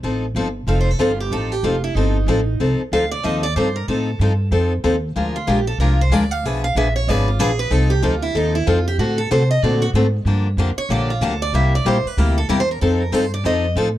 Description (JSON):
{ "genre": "acoustic string swing (jazz manouche)", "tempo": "188 BPM", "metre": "4/4", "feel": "swing 61% on 8ths", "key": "F mixolydian", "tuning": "A4 = 440 Hz", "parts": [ { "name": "picked steel-string acoustic guitar", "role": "accompaniment", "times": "0.0-13.9 s", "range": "B2 to B4", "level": "-20 LUFS", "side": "left 2 dB", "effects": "none" }, { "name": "upright bass", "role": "bass", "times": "0.0-14.0 s", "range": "F1 to C3", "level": "-19 LUFS", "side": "equal", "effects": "none" }, { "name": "picked steel-string acoustic guitar", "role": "melody", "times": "0.7-13.8 s", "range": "Eb4 to F5", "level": "-23 LUFS", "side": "right 3 dB", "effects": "none" } ], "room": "small room reverb", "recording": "dry, close 1970s-style studio recording", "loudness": "-16 LUFS", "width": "side -13 dB against mid", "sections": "0.0-14.0 A section", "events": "steel-string acoustic guitar solo 0.0-14.0", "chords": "0.0 F7; 5.2 Bb7; 6.4 Bdim7; 7.7 F7; 9.0 D7; 10.3 Gm7; 11.5 C7; 12.8 F7" }